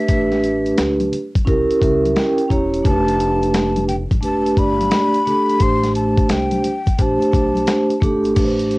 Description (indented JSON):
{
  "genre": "hip hop, jazz-hop",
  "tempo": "87 BPM",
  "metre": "4/4",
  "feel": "swing 66% on 16ths",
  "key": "A minor",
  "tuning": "A4 = 438 Hz",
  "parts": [
    { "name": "breathy mellow silver concert flute", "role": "melody", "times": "0.0-8.0 s", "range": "E5 to C6", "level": "-22 LUFS", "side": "left 2 dB", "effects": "cassette tape" },
    { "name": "vibraphone with soft mallets", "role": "accompaniment", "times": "0.0-8.8 s", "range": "A3 to Bb5", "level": "-17 LUFS", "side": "right 1 dB", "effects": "cassette tape" },
    { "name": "upright bass", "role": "bass", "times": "0.1-8.8 s", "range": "E1 to D2", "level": "-25 LUFS", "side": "equal", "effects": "none" },
    { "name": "dusty soul sampler-style drum kit", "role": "drums", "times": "0.1-8.8 s", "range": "crash cymbal, hi-hat, kick drum, snare drum", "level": "-19 LUFS", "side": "equal", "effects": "cassette tape" },
    { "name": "tube shaker and congas", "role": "percussion", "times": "0.1-8.8 s", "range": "none", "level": "-30 LUFS", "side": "left 3 dB", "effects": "none" }
  ],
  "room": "moderate small room reverb, RT60 0.5 s",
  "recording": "home recording on cassette",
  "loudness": "-15 LUFS",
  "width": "side -21 dB against mid",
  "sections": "0.0-8.4 A section",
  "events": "vibraphone fill 1.5-2.8",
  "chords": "0.1 Asus2; 1.5 C7b9; 2.8 F; 4.2 Em7; 5.6 Am7; 7.0 Am9"
}